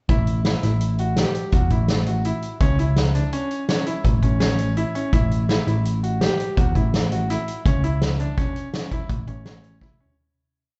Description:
progressive instrumental, band music in an uneven meter; 166 BPM; 7/4; straight; A mixolydian; A4 = 439 Hz
clear grand piano; arpeggios; 0.1-10.1 s; C#4 to G4; -30 LUFS; equal; slapback echo
picked electric bass; bass; 0.1-9.9 s; A1 to E2; -24 LUFS; equal
soft-mallet drum kit; drums; 0.1-10.1 s; hi-hat, kick drum, snare drum, toms; -25 LUFS; equal
studio ambience; live gig heard through the venue's PA, club reverb, nothing above 8.0 kHz; -22 LUFS; mono
0.1-10.2 A section
fade-out 7.7-10.2; drum fill 9.8-10.2
0.1 A
| 0.09 0.45 0.81 1.17 1.53 1.89 2.25 | 2.61 2.97 3.33 3.69 4.05 4.41 4.77 | 5.13 5.49 5.85 6.21 6.57 6.93 7.30 | 7.66 8.02 8.38 8.74 9.10 9.46 9.82

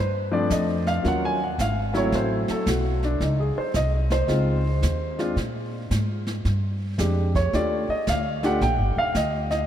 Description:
jazz piano trio; 111 BPM; 4/4; swing 67% on 8ths; Bb major; A4 = 440 Hz
warm upright piano; melody; 0.0-9.7 s; F3 to Ab5; -24 LUFS; equal
upright bass; bass; 0.0-9.7 s; Eb1 to Bb2; -25 LUFS; equal
jazz brush drum kit; drums; 0.5-9.7 s; brushed snare drum, hi-hat, kick drum, snare drum; -32 LUFS; right 1 dB
moderate cathedral reverb, RT60 5.2 s; in a vast, echoing space; -21 LUFS; side -10 dB against mid
0.0-9.7 A section
upright piano solo 0.0-9.7
0.0 Bbmaj9 (rootless); 1.0 Ebm7; 2.1 Am69; 3.2 Dbmaj9; 5.4 Bb7(no3); 7.5 Ebmaj9#11
0.50 | 1.04 1.58 2.12 2.66 | 3.20 3.74 4.28 4.82 | 5.36 5.90 6.45 6.99 | 7.53 8.07 8.61 9.15

